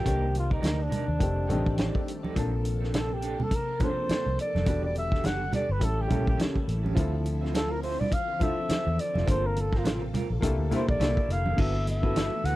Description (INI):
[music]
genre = lush 1970s-style soul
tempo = 104 BPM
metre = 4/4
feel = swing 58% on 16ths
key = unclear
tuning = A4 = 440 Hz
[part]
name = breathy flugelhorn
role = melody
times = 0.0-12.6 s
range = D4 to F#5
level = -31 LUFS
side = equal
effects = none
[part]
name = dark grand piano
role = accompaniment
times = 0.0-12.6 s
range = Eb3 to A4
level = -34 LUFS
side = left 4 dB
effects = none
[part]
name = phased string machine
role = sustained chords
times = 0.0-12.6 s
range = Bb2 to A4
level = -39 LUFS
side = left 1 dB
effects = ensemble chorus, phaser
[part]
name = electric guitar through a small old amp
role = riff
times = 0.0-12.6 s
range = Bb3 to F5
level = -37 LUFS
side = right 6 dB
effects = tremolo
[part]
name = vintage muted fingered electric bass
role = bass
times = 0.0-12.6 s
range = E1 to E2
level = -29 LUFS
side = equal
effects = none
[part]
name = warm soul drum kit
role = drums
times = 0.1-12.6 s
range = crash cymbal, hi-hat, kick drum, snare drum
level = -29 LUFS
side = equal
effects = none
[part]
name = congas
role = percussion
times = 0.1-12.3 s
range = none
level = -34 LUFS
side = right 2 dB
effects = none
[part]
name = mellow horn section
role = stabs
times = 10.4-12.3 s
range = Bb2 to E4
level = -36 LUFS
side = left 8 dB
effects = none
[sound]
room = little or no reverb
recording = dry, close 1970s-style studio recording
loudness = -25 LUFS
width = side -16 dB against mid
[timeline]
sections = 0.0-11.6 A section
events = flugelhorn solo 0.0-11.6; band accent 9.3-11.6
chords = 0.1 Cm9; 1.2 F13; 2.4 Bbmaj9; 4.7 Em11; 5.8 A7; 7.0 Dm9; 9.3 Gm11; 10.4 C13; 11.6 Gmaj13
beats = | 0.06 0.64 1.21 1.79 | 2.36 2.94 3.52 4.09 | 4.67 5.24 5.82 6.39 | 6.97 7.54 8.12 8.70 | 9.27 9.85 10.42 11.00 | 11.58 12.15